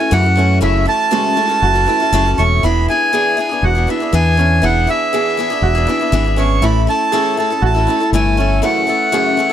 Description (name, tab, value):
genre	indie folk with a building arrangement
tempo	120 BPM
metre	4/4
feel	straight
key	F# minor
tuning	A4 = 439 Hz
part	accordion	melody	0.0-9.5 s	E5 to C#6	-16 LUFS	right 2 dB	none
part	picked swing-style acoustic guitar	accompaniment	0.0-9.5 s	F#2 to A4	-19 LUFS	left 8 dB	none
part	bright upright piano	arpeggios	0.0-9.5 s	G#3 to G#4	-22 LUFS	right 8 dB	none
part	deep dub fingered electric bass	bass	0.1-8.6 s	E1 to F#2	-15 LUFS	equal	none
room	little or no reverb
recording	dry, close 1970s-style studio recording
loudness	-12 LUFS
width	side -10 dB against mid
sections	0.0-9.5 A section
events	none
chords	0.0 F#m7; 2.6 E7; 6.6 A; 8.6 F#m7